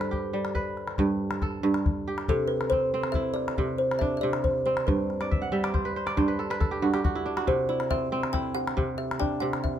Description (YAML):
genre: west african traditional, West African string and xylophone music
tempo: 92 BPM (dotted quarters)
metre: 12/8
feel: straight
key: C lydian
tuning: A4 = 440 Hz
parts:
  - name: kalimba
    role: melody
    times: 0.0-9.8 s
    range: G4 to G5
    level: -29 LUFS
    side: left 1 dB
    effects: none
  - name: kora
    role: arpeggios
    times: 0.0-9.8 s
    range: G2 to F#5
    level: -28 LUFS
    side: right 2 dB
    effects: none
  - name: calabash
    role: percussion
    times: 0.0-9.7 s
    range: none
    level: -30 LUFS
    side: left 2 dB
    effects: none
room: little or no reverb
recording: close, detailed microphones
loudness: -25 LUFS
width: side -10 dB against mid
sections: 0.0-9.8 A section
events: kora fill 5.2-7.5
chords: 0.0 G; 2.3 C; 4.9 G; 7.5 C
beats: 0.33 0.98 1.63 | 2.28 2.93 3.58 4.23 | 4.88 5.53 6.18 6.83 | 7.48 8.12 8.77 9.42